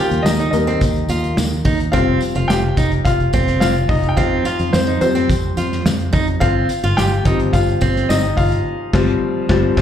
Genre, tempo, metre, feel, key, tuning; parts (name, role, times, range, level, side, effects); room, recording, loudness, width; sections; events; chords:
piano-driven pop; 107 BPM; 4/4; straight; A4 = 439 Hz
warm concert grand piano; accompaniment; 0.0-9.8 s; Eb3 to G5; -19 LUFS; left 3 dB; slapback echo
fingerpicked steel-string acoustic guitar; riff; 0.0-8.2 s; C4 to F4; -22 LUFS; right 4 dB; slapback echo
fingered electric bass; bass; 0.1-9.8 s; F1 to F2; -19 LUFS; equal
modern studio drum kit; drums; 0.1-9.8 s; crash cymbal, hi-hat, kick drum, snare drum; -20 LUFS; equal
tambourine; percussion; 0.3-8.5 s; -34 LUFS; left 3 dB
light reverb; live gig heard through the venue's PA, club reverb; -14 LUFS; side -9 dB against mid
0.0-9.8 A section
grand piano solo 0.0-9.8; band accent 8.7-9.8
0.0 Cm7/Eb (rootless); 1.9 Fsus2; 6.4 Csus4/G